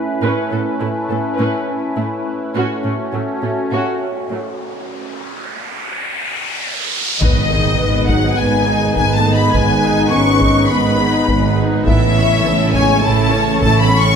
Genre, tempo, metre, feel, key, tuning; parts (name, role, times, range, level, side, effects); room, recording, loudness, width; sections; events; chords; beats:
cinematic, hybrid orchestral and electronic film score; 103 BPM; 4/4; straight; G# phrygian; A4 = 440 Hz
sweeping resonant pad; sustained chords; 0.0-14.2 s; E3 to C#5; -21 LUFS; equal; chorus, phaser, low-pass filter
rich symphonic viola section; accompaniment; 0.2-14.2 s; F#3 to C#5; -23 LUFS; equal; low-pass filter
rich symphonic cello section; bass; 0.2-14.1 s; G#2 to A2; -20 LUFS; right 3 dB
riser and impact; sound effects; 4.0-9.5 s; -23 LUFS; equal
clear symphonic violin section; melody; 7.2-14.2 s; D#5 to C#6; -20 LUFS; left 4 dB; low-pass filter
clear symphonic violin section; second line; 7.2-14.2 s; D#5 to C#6; -20 LUFS; left 2 dB
dark French horn section; sustained chords; 7.2-14.2 s; D#3 to C#4; -22 LUFS; left 3 dB; low-pass filter
dark trombone section; sustained chords; 7.2-14.2 s; C#3 to B3; -23 LUFS; right 2 dB
clear symphonic double bass section; bass; 7.2-14.1 s; G#1 to A1; -22 LUFS; right 3 dB
taiko ensemble; drums; 7.2-14.2 s; -21 LUFS; left 1 dB
moderate scoring stage reverb, RT60 1.9 s; -14 LUFS; side -7 dB against mid
0.0-7.2 A section; 7.2-14.2 B section
build-up 0.0-7.2; filter sweep 0.0-7.2; riser 4.0-7.2; break 4.9-7.2; impact 7.2-9.5
0.0 Aadd9; 2.6 F#m/A; 7.2 G#m; 11.9 A
| 0.22 0.80 1.39 1.97 | 2.55 3.13 3.72 4.30 | 4.88 5.46 6.05 6.63 | 7.21 7.79 8.38 8.96 | 9.54 10.12 10.71 11.29 | 11.87 12.45 13.04 13.62